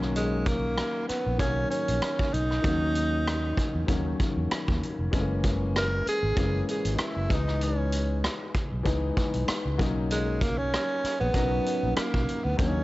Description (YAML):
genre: lush 1970s-style soul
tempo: 96 BPM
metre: 4/4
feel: swing 54% on 16ths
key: unclear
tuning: A4 = 442 Hz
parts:
  - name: warm grand piano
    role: accompaniment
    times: 0.0-12.8 s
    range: D#3 to A#4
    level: -31 LUFS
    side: left 3 dB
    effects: none
  - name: fingered electric bass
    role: bass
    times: 0.0-12.8 s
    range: E#1 to E2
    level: -29 LUFS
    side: equal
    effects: none
  - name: vintage drum kit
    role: drums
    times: 0.0-12.7 s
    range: hi-hat, kick drum, rim click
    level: -30 LUFS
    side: equal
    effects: none
  - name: breathy tenor saxophone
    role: melody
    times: 0.2-12.8 s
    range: G#3 to A#4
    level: -29 LUFS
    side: right 1 dB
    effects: none
  - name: mellow electric guitar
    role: riff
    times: 11.2-12.4 s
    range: C#4 to C#5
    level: -37 LUFS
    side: right 6 dB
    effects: none
room: small room ambience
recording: nothing above 7.8 kHz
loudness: -24 LUFS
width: side -18 dB against mid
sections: 0.0-12.8 A section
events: none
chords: 0.0 Bmaj9; 2.6 D#m7; 5.1 F#9; 7.3 C#m7; 9.8 Bmaj9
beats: | 0.15 0.78 1.40 2.02 | 2.64 3.26 3.88 4.50 | 5.13 5.75 6.37 6.99 | 7.61 8.24 8.86 9.48 | 10.10 10.72 11.35 11.97 | 12.59